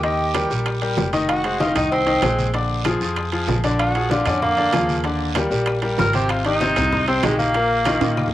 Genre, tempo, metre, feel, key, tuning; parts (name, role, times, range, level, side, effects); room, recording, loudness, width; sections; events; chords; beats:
latin, salsa; 192 BPM; 4/4; straight; Eb major; A4 = 440 Hz
clear tenor saxophone; melody; 0.0-8.3 s; Ab3 to Bb4; -22 LUFS; right 1 dB; cassette tape, tape echo
bright grand piano; accompaniment; 0.0-8.3 s; Bb2 to Eb5; -22 LUFS; left 2 dB; cassette tape
upright bass; bass; 0.0-8.3 s; F1 to Bb2; -25 LUFS; right 1 dB
bongos; percussion; 0.0-8.3 s; -30 LUFS; left 5 dB
congas; percussion; 0.0-8.3 s; -29 LUFS; equal
guiro; percussion; 0.0-8.3 s; -34 LUFS; right 10 dB
timbales; percussion; 0.0-8.1 s; -27 LUFS; right 7 dB
claves; percussion; 0.4-8.3 s; -36 LUFS; left 5 dB
moderate studio reverb, RT60 0.5 s; home recording on cassette; -17 LUFS; side -14 dB against mid
0.0-8.3 A section
tenor saxophone solo 0.0-8.3; drum fill 8.0-8.3
0.0 Ebadd9; 1.3 Fm7; 2.5 Bb7; 5.0 Ebmaj7; 6.3 Abmaj9; 7.5 Bbsus4
| 0.04 0.35 0.67 0.98 | 1.29 1.60 1.92 2.23 | 2.54 2.86 3.17 3.48 | 3.80 4.11 4.42 4.74 | 5.05 5.36 5.67 5.99 | 6.30 6.61 6.92 7.24 | 7.55 7.86 8.18